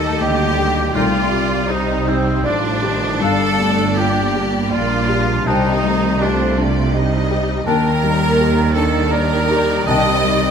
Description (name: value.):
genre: cinematic.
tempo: 81 BPM.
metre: 3/4.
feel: rubato.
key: unclear.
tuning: A4 = 440 Hz.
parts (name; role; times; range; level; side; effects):
clear symphonic violin section; melody; 0.0-10.5 s; C5 to F5; -28 LUFS; left 3 dB; none.
bright symphonic violin section; second line; 0.0-10.5 s; C4 to Eb5; -21 LUFS; equal; none.
clear oboe; second line; 0.0-10.5 s; C4 to Eb5; -24 LUFS; right 2 dB; none.
felt-muted upright piano; accompaniment; 0.0-10.5 s; C2 to Eb5; -21 LUFS; left 5 dB; none.
warm symphonic viola section; accompaniment; 0.0-10.5 s; Eb3 to D5; -24 LUFS; equal; none.
clear symphonic cello section; bass; 0.0-10.5 s; G2 to Eb3; -24 LUFS; right 4 dB; none.
clear symphonic double bass section; bass; 0.0-10.5 s; G1 to Eb2; -22 LUFS; right 4 dB; none.
warm clarinet; second line; 0.9-10.1 s; D4 to Eb4; -26 LUFS; left 2 dB; none.
hollow small flute group; second line; 1.0-10.2 s; F5 to G5; -26 LUFS; left 3 dB; none.
room: moderate scoring stage reverb, RT60 2.0 s.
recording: close, detailed microphones.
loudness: -14 LUFS.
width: side -7 dB against mid.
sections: 0.0-10.5 A section.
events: none.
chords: 0.0 Ebmaj7; 0.9 Cmadd9; 3.2 Gm7; 5.5 Cmadd9; 7.7 Ebmaj7; 9.9 Cmadd9.